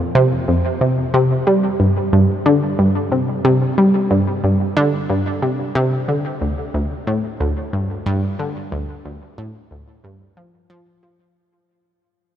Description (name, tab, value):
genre	ambient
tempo	91 BPM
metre	4/4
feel	straight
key	unclear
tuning	A4 = 440 Hz
part	analog pluck	solo	0.1-11.3 s	D2 to G3	-16 LUFS	equal	chorus, analog delay
room	wet huge ambient reverb, RT60 7.6 s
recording	none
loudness	-16 LUFS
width	side -10 dB against mid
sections	0.0-11.4 A section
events	fade-out 4.3-11.4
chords	none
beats	0.15 | 0.81 1.47 2.13 2.79 | 3.45 4.11 4.77 5.42 | 6.08 6.74 7.40 8.06 | 8.72 9.38 10.04 10.70